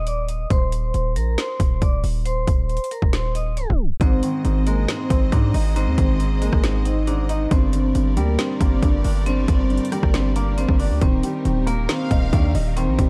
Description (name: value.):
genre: hip hop, trap.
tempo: 137 BPM.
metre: 4/4.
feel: half-time.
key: unclear.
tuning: A4 = 438 Hz.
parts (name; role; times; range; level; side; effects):
hard-hitting 808-style bass; bass; 0.0-13.1 s; Eb1 to Ab2; -24 LUFS; equal; none.
vibraphone with medium hard mallets; melody; 0.1-13.1 s; Bb3 to Eb6; -28 LUFS; equal; low-pass filter.
trap drum kit; drums; 0.1-13.1 s; hi-hat, kick drum, rim click, snare drum; -23 LUFS; equal; overdrive.
felt-muted upright piano; accompaniment; 4.0-13.1 s; G2 to Eb5; -29 LUFS; equal; low-pass filter.
clear studio string section; sustained chords; 4.0-13.1 s; Eb3 to Eb5; -37 LUFS; equal; none.
rich studio violin section; second line; 11.9-12.7 s; F5; -36 LUFS; equal; none.
room: studio reverb.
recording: dark, warm production, tape stop.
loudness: -20 LUFS.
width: mono.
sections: 0.0-4.0 A section; 4.0-13.1 B section.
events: tape stop 3.6-4.0.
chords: 0.0 Eb5; 4.0 Ab; 7.5 Gm; 11.0 Eb.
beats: 0.07 | 0.50 0.94 1.38 1.82 | 2.26 2.69 3.13 3.57 | 4.01 4.45 4.88 5.32 | 5.76 6.20 6.64 7.07 | 7.51 7.95 8.39 8.83 | 9.26 9.70 10.14 10.58 | 11.02 11.45 11.89 12.33 | 12.77.